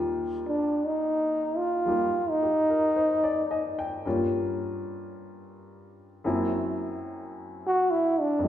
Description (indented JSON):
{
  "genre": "jazz ballad",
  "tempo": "55 BPM",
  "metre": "4/4",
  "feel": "swing 68% on 8ths",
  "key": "unclear",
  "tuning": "A4 = 440 Hz",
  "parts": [
    { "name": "warm upright piano", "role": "accompaniment", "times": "0.0-8.5 s", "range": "Eb2 to G5", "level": "-30 LUFS", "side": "left 2 dB", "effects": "none" },
    { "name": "breathy trombone", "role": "melody", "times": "0.5-8.5 s", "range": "D4 to Gb4", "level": "-24 LUFS", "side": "equal", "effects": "none" }
  ],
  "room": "moderate concert hall reverb, RT60 1.8 s",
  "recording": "recorded in a church or concert hall",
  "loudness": "-24 LUFS",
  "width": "side -11 dB against mid",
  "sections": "0.0-8.5 A section",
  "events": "trombone solo 0.0-8.5",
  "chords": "0.0 Eb; 4.1 Gm7b5; 6.2 Gb7#11"
}